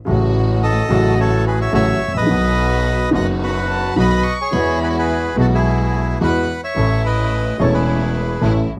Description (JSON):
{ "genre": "tango", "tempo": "108 BPM", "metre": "4/4", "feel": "rubato", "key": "E major", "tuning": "A4 = 440 Hz", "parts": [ { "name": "dark baby grand piano", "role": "accompaniment", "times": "0.1-8.8 s", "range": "E1 to C#5", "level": "-21 LUFS", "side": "equal", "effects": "none" }, { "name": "rich symphonic string section", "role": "stabs", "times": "0.1-8.7 s", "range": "G#3 to F#4", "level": "-30 LUFS", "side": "equal", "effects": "none" }, { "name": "clear double bass", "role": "bass", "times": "0.1-8.8 s", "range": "E1 to E2", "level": "-22 LUFS", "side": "equal", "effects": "none" }, { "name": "bandoneon", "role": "melody", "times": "0.6-8.5 s", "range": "E4 to F#5", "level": "-23 LUFS", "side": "equal", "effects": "none" }, { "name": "warm violin", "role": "second line", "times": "3.7-5.0 s", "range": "A5 to C#6", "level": "-29 LUFS", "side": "equal", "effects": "tape echo" } ], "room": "little or no reverb", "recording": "close, detailed microphones", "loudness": "-17 LUFS", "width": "mono", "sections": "0.0-8.8 A section", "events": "none", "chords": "0.1 F#m/A; 2.3 B; 4.5 Eadd9; 6.8 A" }